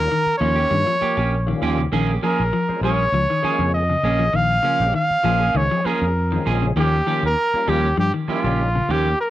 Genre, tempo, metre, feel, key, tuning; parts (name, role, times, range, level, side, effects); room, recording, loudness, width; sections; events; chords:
afrobeat; 99 BPM; 4/4; straight; Bb dorian; A4 = 440 Hz
clear trumpet; melody; 0.0-9.3 s; F4 to F5; -20 LUFS; equal; cassette tape
percussive tonewheel organ; accompaniment; 0.0-8.7 s; G3 to Ab4; -31 LUFS; left 6 dB; slow rotary speaker, overdrive, chorus vibrato, cassette tape
fingered electric bass; bass; 0.0-9.1 s; Bb1 to G2; -22 LUFS; equal
clean electric guitar; arpeggios; 0.1-9.1 s; Db3 to G3; -26 LUFS; left 5 dB; cassette tape
clean electric guitar; stabs; 0.4-9.1 s; F3 to Ab4; -25 LUFS; right 5 dB; cassette tape, tape echo
moderate small room ambience, RT60 0.5 s; home recording on cassette; -17 LUFS; side -14 dB against mid
0.0-9.3 A section
0.0 Eb9; 1.9 Bbm7; 6.8 Eb9